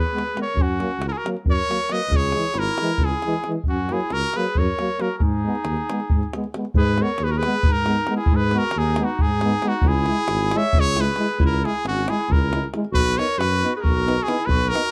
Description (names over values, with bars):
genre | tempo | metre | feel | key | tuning
balkan folk, Balkan brass band | 272 BPM (eighths) | 7/8 | straight | G# minor | A4 = 440 Hz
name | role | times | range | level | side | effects
bright trumpet | melody | 0.0-14.9 s | F#4 to E5 | -26 LUFS | equal | plate reverb
warm clarinet | second line | 0.0-14.9 s | C#4 to C#5 | -32 LUFS | equal | none
dark tuba | bass | 0.0-14.7 s | G#1 to G#2 | -26 LUFS | equal | none
clear euphonium | accompaniment | 0.1-14.8 s | G#3 to E4 | -33 LUFS | equal | none
warm trombone | accompaniment | 0.1-14.8 s | E3 to B3 | -30 LUFS | equal | none
davul | percussion | 0.1-14.9 s | none | -24 LUFS | equal | none
room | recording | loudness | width
light reverb | dark, warm production | -21 LUFS | mono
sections
0.0-6.8 A section; 6.8-14.9 B section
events
none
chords
0.0 E (rootless); 0.6 F#; 2.1 C#m; 3.7 F#; 5.2 G#m; 9.8 C#m; 12.9 B